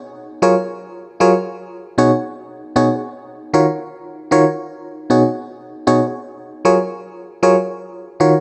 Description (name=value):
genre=reggae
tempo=77 BPM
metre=4/4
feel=straight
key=unclear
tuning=A4 = 440 Hz
part: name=FM electric piano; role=solo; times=0.4-8.3 s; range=B2 to Db5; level=-18 LUFS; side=equal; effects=chorus, tremolo
room=moderate plate reverb, RT60 2.8 s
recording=none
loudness=-17 LUFS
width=mono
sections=0.0-8.4 A section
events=none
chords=0.0 Gbmaj9; 1.6 B6; 3.1 Ebm7; 4.7 B6; 6.3 Gbmaj9; 7.8 Ebm7